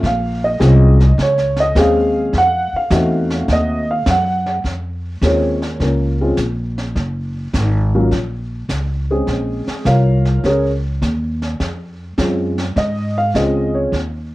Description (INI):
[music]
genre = jazz piano trio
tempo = 104 BPM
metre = 4/4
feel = swing 69% on 8ths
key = Bb minor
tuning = A4 = 440 Hz
[part]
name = dark upright piano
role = melody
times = 0.0-13.9 s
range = Gb3 to Gb5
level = -17 LUFS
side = equal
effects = cassette tape
[part]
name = upright bass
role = bass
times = 0.0-14.3 s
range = Gb1 to Ab2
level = -17 LUFS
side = equal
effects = none
[part]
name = jazz brush drum kit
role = drums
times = 0.0-14.3 s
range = brushed snare drum, hi-hat, kick drum, snare drum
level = -24 LUFS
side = equal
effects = cassette tape
[sound]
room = light reverb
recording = home recording on cassette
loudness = -14 LUFS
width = side -18 dB against mid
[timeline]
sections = 0.0-4.6 A section; 4.6-14.3 B section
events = upright piano solo 0.0-4.6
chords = 0.0 Bbm7; 2.3 F7b9; 4.6 Bbm7; 7.0 Gbadd9; 9.3 Bbm7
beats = | 0.03 0.61 1.18 1.76 | 2.34 2.91 3.49 4.07 | 4.64 5.22 5.80 6.38 | 6.96 7.54 8.12 8.70 | 9.28 9.86 10.44 11.02 | 11.60 12.18 12.77 13.35 | 13.93